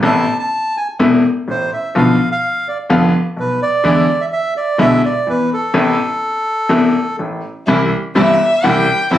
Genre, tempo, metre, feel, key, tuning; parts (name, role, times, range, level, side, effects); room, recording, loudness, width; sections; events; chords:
tango; 126 BPM; 4/4; rubato; A harmonic minor; A4 = 440 Hz
bandoneon; melody; 0.0-7.2 s; A4 to A5; -17 LUFS; right 2 dB; plate reverb
bright grand piano; accompaniment; 0.0-9.2 s; E1 to F4; -14 LUFS; left 2 dB
upright bass; bass; 0.0-9.2 s; E1 to E2; -23 LUFS; right 2 dB
dark studio string section; stabs; 7.7-9.2 s; G3 to E4; -22 LUFS; right 2 dB
warm violin; second line; 8.2-9.2 s; E5 to G5; -13 LUFS; left 1 dB
moderate club reverb, RT60 0.6 s; recorded on a phone in the room, studio ambience; -13 LUFS; side -12 dB against mid
0.0-7.7 A section; 7.7-9.2 B section
violin solo 7.7-9.2
0.0 Amadd9; 1.9 Bdim; 3.8 E7; 5.7 Amadd9; 7.7 C